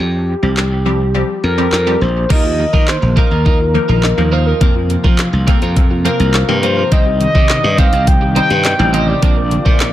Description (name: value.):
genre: dance-pop.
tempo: 104 BPM.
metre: 4/4.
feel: straight.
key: unclear.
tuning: A4 = 440 Hz.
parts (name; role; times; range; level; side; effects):
mellow horn-like synth lead; melody; 0.0-9.9 s; G4 to G5; -18 LUFS; left 1 dB; chorus, dub echo.
wavetable chord stab; accompaniment; 0.0-9.9 s; F3 to C5; -22 LUFS; equal; phaser, sidechain pumping, dub echo.
glassy slap bass; bass; 0.0-9.9 s; A1 to F3; -16 LUFS; equal; sidechain pumping.
smooth R&B drum kit; drums; 0.6-9.9 s; crash cymbal, handclaps, hi-hat, kick drum, snare drum; -14 LUFS; equal; none.
warm analog pad; sustained chords; 2.3-9.9 s; C3 to G4; -23 LUFS; equal; chorus, sidechain pumping.
soft round pluck; arpeggios; 2.3-9.9 s; C3 to C6; -26 LUFS; left 4 dB; none.
twelve-string electric guitar; riff; 2.3-9.8 s; Bb3 to C5; -23 LUFS; right 5 dB; lush chorus, dub echo.
riser; sound effects; 9.6-9.9 s; none; -30 LUFS; right 3 dB; none.
room: light reverb.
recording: echo-heavy mix.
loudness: -11 LUFS.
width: side -13 dB against mid.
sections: 0.0-2.3 A section; 2.3-9.9 B section.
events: none.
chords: 0.0 Fsus2; 2.3 Ebsus2; 4.6 Fsus4; 6.9 Cm; 9.2 Bbadd9.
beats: 0.57 1.15 1.73 | 2.30 2.88 3.46 4.03 | 4.61 5.19 5.76 6.34 | 6.92 7.50 8.07 8.65 | 9.22 9.80.